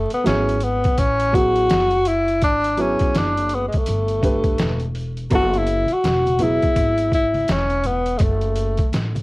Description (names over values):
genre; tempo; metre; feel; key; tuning
hip hop, jazz-hop; 83 BPM; 4/4; swing 62% on 16ths; F# minor; A4 = 442 Hz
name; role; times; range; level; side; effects
mellow tenor saxophone; melody; 0.0-8.9 s; G#3 to F#4; -19 LUFS; left 1 dB; plate reverb
upright bass; bass; 0.0-9.2 s; E1 to A1; -24 LUFS; equal; none
trip hop sampler-style drum kit; drums; 0.1-9.2 s; hi-hat, kick drum, snare drum; -22 LUFS; equal; none
dark upright piano; accompaniment; 0.2-7.4 s; F#3 to B4; -24 LUFS; right 2 dB; plate reverb
maracas and congas; percussion; 5.3-9.2 s; none; -32 LUFS; equal; none
room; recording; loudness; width
moderate studio ambience, RT60 0.5 s; worn, warbling old tape, cassette tape, vinyl crackle, warbly pitch drift; -17 LUFS; side -21 dB against mid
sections
0.0-9.2 A section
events
none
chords
0.0 F#m9; 2.4 F#9sus4; 3.9 Gadd9; 5.3 F#m9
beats
0.25 0.97 1.70 | 2.42 3.14 3.87 4.59 | 5.31 6.03 6.76 7.48 | 8.20 8.93